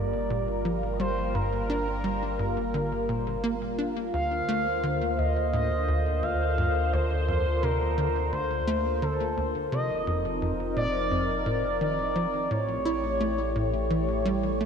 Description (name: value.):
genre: ambient.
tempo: 86 BPM.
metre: 4/4.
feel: straight.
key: G minor.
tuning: A4 = 440 Hz.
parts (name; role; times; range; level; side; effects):
expressive portamento lead; melody; 0.0-14.6 s; A4 to F5; -30 LUFS; equal; chorus, vintage 12-bit sampler grit, ping-pong delay.
sweeping resonant pad; sustained chords; 0.0-14.7 s; D3 to C#5; -30 LUFS; equal; chorus, phaser.
tight sequencer bass; riff; 0.0-14.7 s; D2 to E4; -31 LUFS; equal; wide subtle chorus, ping-pong delay.
warm sub bass; bass; 0.0-14.7 s; F1 to D2; -32 LUFS; equal; none.
room: wet lush hall reverb, RT60 2.6 s.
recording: dreamy mix soaked in reverb, cassette tape.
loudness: -25 LUFS.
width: side -7 dB against mid.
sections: 0.0-14.7 A section.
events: none.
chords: 0.0 Gm7; 4.1 Dm7; 9.7 F7sus4; 12.5 A7.